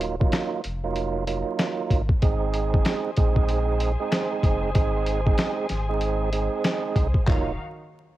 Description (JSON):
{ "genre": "hip hop, boom-bap hip-hop", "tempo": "95 BPM", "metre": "4/4", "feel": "swing 60% on 16ths", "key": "unclear", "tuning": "A4 = 440 Hz", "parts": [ { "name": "tonewheel organ", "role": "accompaniment", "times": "0.0-7.5 s", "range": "Gb3 to Ab4", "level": "-27 LUFS", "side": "right 6 dB", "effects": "overdrive, fast rotary speaker, high-pass filter, low-pass filter, cassette tape" }, { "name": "sub bass with octave", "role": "bass", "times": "0.0-7.6 s", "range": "Eb1 to C2", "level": "-27 LUFS", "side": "equal", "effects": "tube saturation" }, { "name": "boom bap sampler-style drum kit", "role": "drums", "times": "0.0-7.5 s", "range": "handclaps, hi-hat, kick drum, snare drum, toms", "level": "-23 LUFS", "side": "equal", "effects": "cassette tape" }, { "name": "finger snap", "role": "percussion", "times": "0.3-7.6 s", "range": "none", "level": "-42 LUFS", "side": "left 9 dB", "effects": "none" }, { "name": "muted symphonic string section", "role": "sustained chords", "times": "2.2-7.6 s", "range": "Eb3 to Ab5", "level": "-34 LUFS", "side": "left 2 dB", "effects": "high-pass filter, low-pass filter, cassette tape" } ], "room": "digital ambience", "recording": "home recording on cassette, vinyl crackle", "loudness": "-21 LUFS", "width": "side -15 dB against mid", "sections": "0.0-7.3 A section", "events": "none", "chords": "0.0 Ebmadd9; 2.2 Ab; 7.3 Ebmadd9" }